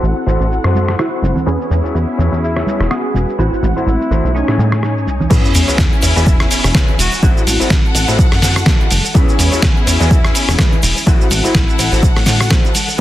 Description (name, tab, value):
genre	filtered disco house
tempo	125 BPM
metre	4/4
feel	swing 56% on 16ths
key	E major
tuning	A4 = 440 Hz
part	funky polysynth comp	accompaniment	0.0-13.0 s	A3 to G#5	-21 LUFS	equal	chorus, phaser, vintage 12-bit sampler grit, sidechain pumping, low-pass filter
part	rich studio string section	sustained chords	0.0-13.0 s	A3 to G#5	-23 LUFS	left 1 dB	sidechain pumping, low-pass filter
part	electric guitar through a small old amp	riff	0.0-13.0 s	D#4 to D#5	-24 LUFS	left 3 dB	vintage 12-bit sampler grit, sidechain pumping, low-pass filter
part	plucky analog bass	bass	0.0-12.6 s	E1 to A2	-16 LUFS	equal	tube saturation, sidechain pumping, low-pass filter
part	dusty soul sampler-style drum kit	drums	0.0-13.0 s	crash cymbal, hi-hat, rim click, shaker, snare drum	-17 LUFS	equal	low-pass filter on perc, low-pass filter on snare, low-pass filter on cymbals, low-pass filter on hats
part	egg shaker and congas	percussion	0.0-13.0 s	none	-25 LUFS	right 2 dB	sidechain pumping on perc, low-pass filter on perc
part	warm horn section	melody	2.4-12.1 s	E4 to F#4	-26 LUFS	left 1 dB	sidechain pumping, low-pass filter, dub echo
part	electronic kick drum	drums	5.3-12.6 s	none	-13 LUFS	equal	none
part	sub drop	sound effects	5.4-7.2 s	none	-23 LUFS	equal	none
room	light reverb, digital ambience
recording	dense, heavily limited modern master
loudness	-11 LUFS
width	side -14 dB against mid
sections	0.0-5.3 A section; 5.3-13.0 B section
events	filter sweep 0.0-5.3; drop 5.3-13.0; impact 5.3-7.2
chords	0.0 Am6; 1.5 E6; 3.4 Am6; 4.3 B13; 5.3 E6; 7.2 Am6; 9.2 E6; 11.1 Am6